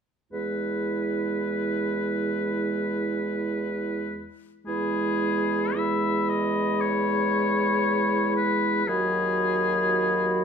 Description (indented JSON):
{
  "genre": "classical, slow romantic movement for wind quintet",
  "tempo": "50-59 BPM",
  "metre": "4/4",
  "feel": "rubato",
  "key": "E major",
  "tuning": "A4 = 440 Hz",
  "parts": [
    { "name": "clear oboe", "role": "second line", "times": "0.3-10.4 s", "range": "G#4 to E5", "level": "-29 LUFS", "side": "left 4 dB", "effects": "none" },
    { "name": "clear clarinet", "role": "accompaniment", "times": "0.3-10.4 s", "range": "E4 to F#4", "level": "-32 LUFS", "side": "right 13 dB", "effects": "none" },
    { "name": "mellow French horn", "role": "accompaniment", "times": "0.3-10.4 s", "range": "F#3 to G#3", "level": "-30 LUFS", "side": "left 1 dB", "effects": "none" },
    { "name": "mellow bassoon", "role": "bass", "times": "0.3-10.4 s", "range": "D#2 to E2", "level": "-28 LUFS", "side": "right 3 dB", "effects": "none" },
    { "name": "mellow hollow concert flute", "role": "melody", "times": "4.7-10.4 s", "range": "B5", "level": "-29 LUFS", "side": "left 10 dB", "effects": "none" }
  ],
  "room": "light reverb",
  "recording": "none",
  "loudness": "-23 LUFS",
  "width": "side -6 dB against mid",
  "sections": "0.3-4.7 A section; 4.7-10.4 B section",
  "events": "none",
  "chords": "0.3 E; 8.9 B/D#"
}